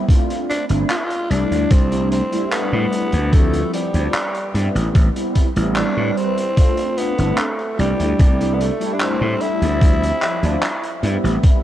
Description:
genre	vaporwave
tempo	74 BPM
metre	4/4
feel	straight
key	D dorian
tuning	A4 = 440 Hz
part	mellow synth brass	accompaniment	0.0-11.6 s	F3 to B4	-22 LUFS	equal	phaser, wide subtle chorus
part	electronic kick drum	drums	0.1-11.6 s	none	-13 LUFS	equal	overdrive
part	raw garage drum kit	drums	0.1-11.6 s	handclaps, hi-hat	-27 LUFS	equal	none
part	growling tenor saxophone	melody	0.5-11.0 s	G3 to F4	-24 LUFS	equal	tape echo
part	gritty slap bass	bass	0.7-11.4 s	G1 to A2	-19 LUFS	equal	overdrive
room	small room ambience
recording	cassette tape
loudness	-16 LUFS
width	side -12 dB against mid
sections	0.0-11.6 A section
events	none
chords	0.1 G9sus4; 1.7 C6; 3.3 Dm11; 5.0 Am7; 6.6 G9sus4; 8.2 C6; 9.8 Dm11

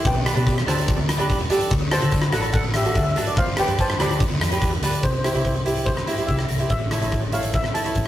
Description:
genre	calypso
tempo	144 BPM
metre	4/4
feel	straight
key	C major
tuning	A4 = 440 Hz
part	cavaquinho	accompaniment	0.0-8.1 s	D4 to C#5	-25 LUFS	right 2 dB	none
part	steel pan	melody	0.1-8.1 s	F#4 to B5	-27 LUFS	equal	none
part	hollow-body short-scale fingered electric bass	bass	0.1-8.1 s	E1 to D3	-24 LUFS	left 1 dB	none
part	huge arena drum kit	drums	0.1-8.1 s	hi-hat, kick drum, rim click	-22 LUFS	equal	none
part	guiro	percussion	0.1-4.9 s	none	-37 LUFS	left 3 dB	none
room	moderate booth ambience, RT60 0.2 s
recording	rough rehearsal-room recording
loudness	-19 LUFS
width	side -13 dB against mid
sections	0.0-5.0 A section; 5.0-8.1 B section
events	none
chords	0.0 Gadd9/B; 1.7 D; 3.4 Gsus4; 4.2 G; 5.0 C; 6.7 A

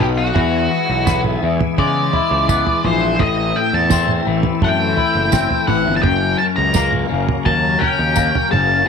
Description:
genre	psychedelic rock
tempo	85 BPM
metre	4/4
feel	straight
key	unclear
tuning	A4 = 441 Hz
part	octave-fuzz lead guitar	melody	0.0-8.9 s	F#4 to A#5	-19 LUFS	right 1 dB	distortion, slapback echo
part	bright tonewheel organ	sustained chords	0.0-8.9 s	E3 to B5	-27 LUFS	right 16 dB	chorus vibrato, slow rotary speaker
part	twangy electric guitar	riff	0.0-8.9 s	F#2 to E4	-19 LUFS	left 12 dB	phaser
part	fuzz picked electric bass	bass	0.0-8.8 s	F#1 to C#3	-21 LUFS	right 1 dB	overdrive
part	cloth-damped thuddy drum kit	drums	0.0-8.7 s	kick drum, snare drum, toms	-20 LUFS	right 4 dB	none
part	tambourine	percussion	1.1-8.3 s	none	-28 LUFS	right 16 dB	none
room	studio ambience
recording	1960s-style stereo with parts hard left and right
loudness	-14 LUFS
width	side -6 dB against mid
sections	0.0-8.9 A section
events	lead electric guitar solo 0.0-8.9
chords	0.4 E; 3.2 Am; 6.0 F#

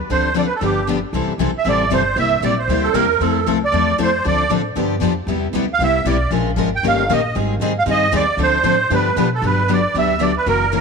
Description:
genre	acoustic string swing (jazz manouche)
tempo	231 BPM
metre	4/4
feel	swing 56% on 8ths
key	C major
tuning	A4 = 439 Hz
part	musette accordion	melody	0.1-10.8 s	G4 to G5	-18 LUFS	right 4 dB	none
part	picked acoustic archtop guitar	accompaniment	0.1-10.8 s	C3 to Bb4	-25 LUFS	right 13 dB	none
part	picked steel-string acoustic guitar	accompaniment	0.1-10.8 s	C3 to Bb4	-20 LUFS	left 13 dB	none
part	upright bass	bass	0.1-10.8 s	F#1 to B2	-23 LUFS	equal	none
part	musette accordion	second line	2.8-3.5 s	A4 to Bb4	-20 LUFS	right 11 dB	none
room	moderate plate reverb, RT60 3.0 s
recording	1960s-style stereo with parts hard left and right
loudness	-15 LUFS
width	side -5 dB against mid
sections	0.0-1.1 A section; 1.1-9.4 B section; 9.4-10.8 A section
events	none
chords	0.1 Dm7; 0.6 G7; 1.1 C6; 2.2 C7; 3.2 Fmaj7; 4.2 Dm7; 4.8 G7; 5.3 Cmaj7; 6.3 Bbm7; 6.8 Eb7; 7.4 Abmaj7; 8.4 Dm7; 8.9 G7; 9.4 Gmaj7

